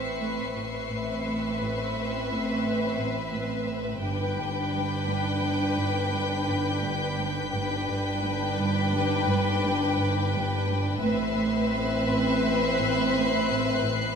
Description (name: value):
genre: cinematic, suspense film score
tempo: 86 BPM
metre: 5/4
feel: straight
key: A minor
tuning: A4 = 440 Hz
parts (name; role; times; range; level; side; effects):
- rich studio violin section; melody; 0.0-14.2 s; E5 to G5; -32 LUFS; left 4 dB; none
- warm symphonic violin section; second line; 0.0-14.2 s; B4; -31 LUFS; left 3 dB; none
- dark studio viola section; accompaniment; 0.0-14.2 s; C4 to D4; -31 LUFS; right 1 dB; none
- dark studio cello section; riff; 0.0-14.0 s; G2 to A3; -34 LUFS; right 2 dB; none
- dark chamber cello section; bass; 0.0-14.2 s; G2 to A2; -32 LUFS; right 2 dB; none
- warm symphonic double bass section; bass; 0.0-14.2 s; G1 to A1; -33 LUFS; right 3 dB; none
- warm symphonic violin section; texture; 0.0-14.2 s; C#6 to C7; -37 LUFS; left 3 dB; none
room: wet scoring stage reverb, RT60 1.6 s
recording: minimal, uncompressed stereo recording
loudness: -24 LUFS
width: side -6 dB against mid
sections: 0.0-14.2 A section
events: none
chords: 0.0 Amadd9; 4.0 G; 11.0 Amadd9